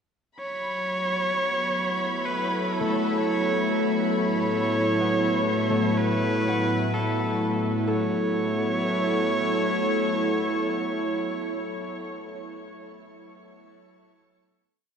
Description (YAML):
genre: ambient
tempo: 64 BPM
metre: 4/4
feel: straight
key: A major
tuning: A4 = 437 Hz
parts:
  - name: clear electric violin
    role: melody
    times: 0.4-12.1 s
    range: A4 to C#5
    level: -28 LUFS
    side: equal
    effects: shimmer reverb, ping-pong delay
  - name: airy breathy pad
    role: sustained chords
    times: 0.4-12.4 s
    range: A2 to C#5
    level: -27 LUFS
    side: equal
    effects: chorus, shimmer reverb
  - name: organ-like drone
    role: drone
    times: 2.0-12.2 s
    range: A3 to E4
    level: -30 LUFS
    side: right 1 dB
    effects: ensemble chorus, built-in reverb
  - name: dark symphonic violin section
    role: texture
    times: 0.4-7.9 s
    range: B5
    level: -37 LUFS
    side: left 1 dB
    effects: shimmer reverb
  - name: concert harp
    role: arpeggios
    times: 2.8-12.1 s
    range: A3 to F#5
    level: -33 LUFS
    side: left 4 dB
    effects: shimmer reverb, ping-pong delay
room: wet cathedral reverb, RT60 5.3 s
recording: in a vast, echoing space, cassette tape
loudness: -22 LUFS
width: side -7 dB against mid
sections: 0.4-7.9 A section; 7.9-11.6 final chord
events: fade-out on violin section 0.4-7.9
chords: 0.4 A; 4.1 F#m/A; 7.9 A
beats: | 0.37 1.31 2.25 3.18 | 4.12 5.06 6.00 6.93 | 7.87 8.81 9.75 10.68